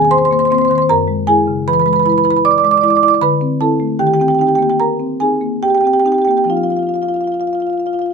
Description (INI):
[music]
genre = classical, contemporary piece for solo marimba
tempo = 66-78 BPM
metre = 3/4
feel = rubato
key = unclear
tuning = A4 = 440 Hz
[part]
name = marimba with soft mallets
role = solo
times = 0.0-8.1 s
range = Gb2 to D6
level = -12 LUFS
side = right 1 dB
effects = none
[sound]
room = light reverb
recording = minimal, uncompressed stereo recording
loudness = -12 LUFS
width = side -5 dB against mid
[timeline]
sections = 0.0-8.1 A section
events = none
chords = 0.0 Abadd9; 0.9 Gb9; 1.7 E7; 3.2 Dsus2; 4.0 Eb6; 6.5 F5